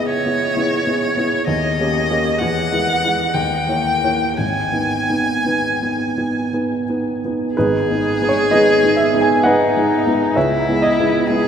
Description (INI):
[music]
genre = classical, romantic duo for violin and grand piano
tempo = 55-66 BPM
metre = 3/4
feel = rubato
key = G# minor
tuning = A4 = 440 Hz
[part]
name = rich violin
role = melody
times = 0.0-11.5 s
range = D#4 to G#5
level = -19 LUFS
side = left 1 dB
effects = none
[part]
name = warm baby grand piano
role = accompaniment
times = 0.0-11.5 s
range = G#1 to G#5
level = -17 LUFS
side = equal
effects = none
[sound]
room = wet cathedral reverb, RT60 6.4 s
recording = in a vast, echoing space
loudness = -15 LUFS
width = side -8 dB against mid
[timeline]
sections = 0.0-7.6 A section; 7.6-11.5 A section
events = none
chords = 0.0 C#m7; 1.5 D#7; 2.4 E; 3.3 D#7b9; 4.4 G#m; 10.4 C#m7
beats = 0.56 | 1.47 2.38 3.33 | 4.37 5.45 6.51 | 7.55 8.51 9.44 | 10.36 11.27